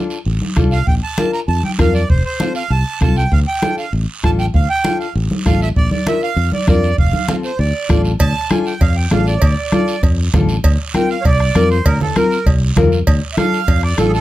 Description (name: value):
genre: latin, cumbia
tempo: 197 BPM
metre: 4/4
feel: straight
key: D minor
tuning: A4 = 436 Hz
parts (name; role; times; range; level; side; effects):
- nylon-string guitar; accompaniment; 0.0-14.2 s; C4 to Bb4; -19 LUFS; left 4 dB; none
- guiro; percussion; 0.1-14.2 s; none; -31 LUFS; right 6 dB; none
- fingered electric bass; bass; 0.3-14.2 s; F1 to F2; -16 LUFS; equal; none
- congas; percussion; 0.3-14.1 s; none; -20 LUFS; equal; none
- bombo; percussion; 0.6-14.1 s; none; -17 LUFS; equal; none
- accordion; melody; 0.7-14.2 s; G#4 to Bb5; -20 LUFS; right 4 dB; none
- cowbell and timbales; percussion; 8.2-13.8 s; none; -24 LUFS; right 3 dB; none
room: little or no reverb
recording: close, detailed microphones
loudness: -13 LUFS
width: side -15 dB against mid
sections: 0.0-8.2 A section; 8.2-14.2 B section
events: accordion solo 8.2-14.2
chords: 0.0 Dm; 0.9 Bb; 2.1 F; 3.3 Dm; 5.8 Bb; 7.0 F; 7.6 Dm; 10.6 Bbsus2; 13.1 Dm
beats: 0.26 0.57 | 0.87 1.18 1.49 1.79 | 2.10 2.40 2.71 3.01 | 3.32 3.62 3.93 4.24 | 4.54 4.85 5.15 5.46 | 5.76 6.07 6.38 6.68 | 6.99 7.29 7.60 7.90 | 8.21 8.51 8.81 9.12 | 9.42 9.73 10.03 10.34 | 10.64 10.94 11.25 11.55 | 11.86 12.16 12.46 12.77 | 13.07 13.38 13.68 13.98